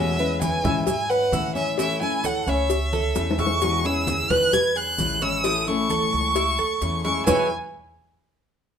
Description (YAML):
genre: latin, Cuban son and guajira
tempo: 131 BPM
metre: 4/4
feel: straight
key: E major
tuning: A4 = 441 Hz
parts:
  - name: warm violin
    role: melody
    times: 0.0-7.5 s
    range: E5 to G#6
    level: -24 LUFS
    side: equal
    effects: none
  - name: nylon-string guitar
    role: second line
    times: 0.0-7.5 s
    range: G#3 to E4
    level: -31 LUFS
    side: equal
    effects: none
  - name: fingerpicked steel-string acoustic guitar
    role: accompaniment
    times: 0.0-7.5 s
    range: E2 to E4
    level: -29 LUFS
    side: left 4 dB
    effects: none
  - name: Cuban tres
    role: arpeggios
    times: 0.0-7.5 s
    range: E4 to E5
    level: -26 LUFS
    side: right 2 dB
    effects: none
  - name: upright bass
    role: bass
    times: 0.0-7.5 s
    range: A1 to A2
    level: -30 LUFS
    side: equal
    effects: none
  - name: congas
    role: percussion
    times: 0.2-7.4 s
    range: none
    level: -31 LUFS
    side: left 1 dB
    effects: none
  - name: maracas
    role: percussion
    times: 0.2-7.4 s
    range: none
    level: -34 LUFS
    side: right 7 dB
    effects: none
  - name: cowbell and bongos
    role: percussion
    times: 0.4-7.4 s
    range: none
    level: -29 LUFS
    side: left 4 dB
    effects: none
room: moderate studio reverb, RT60 0.9 s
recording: minimal, uncompressed stereo recording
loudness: -20 LUFS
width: side -7 dB against mid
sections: 0.0-3.6 A section; 3.6-7.3 B section; 7.3-8.8 C section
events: drum fill 2.9-3.6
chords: 0.0 E6; 1.8 A; 3.6 E6; 5.4 A; 7.3 E6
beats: 0.42 0.87 1.33 | 1.79 2.24 2.70 3.16 | 3.62 4.07 4.53 4.99 | 5.44 5.90 6.36 6.82 | 7.27